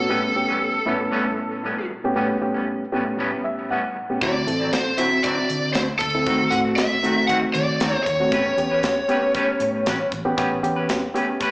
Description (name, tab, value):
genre	straight-eighth soul blues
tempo	117 BPM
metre	4/4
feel	swing 54% on 16ths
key	A mixolydian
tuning	A4 = 439 Hz
part	lead guitar through a small cranked amp	melody	0.0-10.1 s	A4 to F#5	-22 LUFS	equal	overdrive, slapback echo
part	bright reed electric piano	accompaniment	0.0-11.5 s	A2 to F#5	-23 LUFS	equal	slapback echo
part	semi-hollow electric guitar	stabs	0.1-11.5 s	A2 to B4	-27 LUFS	equal	slapback echo, analog delay
part	vintage muted fingered electric bass	bass	4.2-10.9 s	A1 to D#3	-30 LUFS	equal	none
part	tight funk drum kit	drums	4.2-11.5 s	hi-hat, kick drum, snare drum	-26 LUFS	equal	slapback echo
room	light reverb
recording	live gig heard through the venue's PA, club reverb, small speaker sound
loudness	-19 LUFS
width	side -25 dB against mid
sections	0.0-11.5 A section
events	reed electric piano fill 3.2-4.2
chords	0.0 A9; 4.2 D9; 6.3 D#dim7; 8.3 A9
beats	| 0.09 0.61 1.12 1.64 | 2.15 2.66 3.18 3.69 | 4.21 4.72 5.24 5.75 | 6.26 6.78 7.29 7.81 | 8.32 8.84 9.35 9.86 | 10.38 10.89 11.41